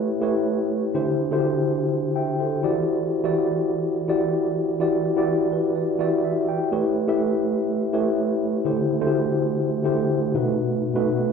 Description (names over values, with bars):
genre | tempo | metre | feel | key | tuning
disco | 125 BPM | 4/4 | straight | E minor | A4 = 439 Hz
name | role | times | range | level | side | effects
mellow tine electric piano | solo | 0.0-11.3 s | B2 to G5 | -20 LUFS | equal | medium stereo tremolo
room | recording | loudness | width
wet large studio reverb, RT60 1.4 s | band playing live in one room | -20 LUFS | side -6 dB against mid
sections
0.0-11.3 A section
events
tine electric piano fill 5.3-6.7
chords
0.0 A7; 0.9 D7sus4; 2.6 Em7; 6.7 A7; 8.7 D7sus4; 10.3 B7